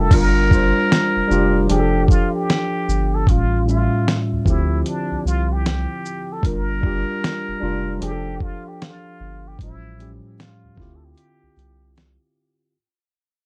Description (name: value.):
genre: lo-fi hip hop.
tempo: 76 BPM.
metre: 4/4.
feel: swing 65% on 16ths.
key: G dorian.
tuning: A4 = 442 Hz.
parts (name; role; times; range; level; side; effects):
trumpet with plunger mute; melody; 0.0-12.0 s; D4 to Bb4; -28 LUFS; equal; none.
tine electric piano; accompaniment; 0.0-12.8 s; A2 to G5; -24 LUFS; equal; cassette tape.
soft dub sub bass; bass; 0.0-12.2 s; F1 to D2; -24 LUFS; equal; none.
dusty soul sampler-style drum kit; drums; 0.1-12.2 s; crash cymbal, hi-hat, kick drum, shaker, snare drum; -21 LUFS; equal; none.
room: light reverb.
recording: cassette tape.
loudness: -19 LUFS.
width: mono.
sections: 0.1-12.7 A section.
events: fade-out 0.1-12.7.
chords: 0.1 Gm7; 1.7 F69; 3.3 A7b13; 4.5 Dm11; 6.4 Gm7; 8.0 F69; 9.6 A7b13; 10.8 Dm11.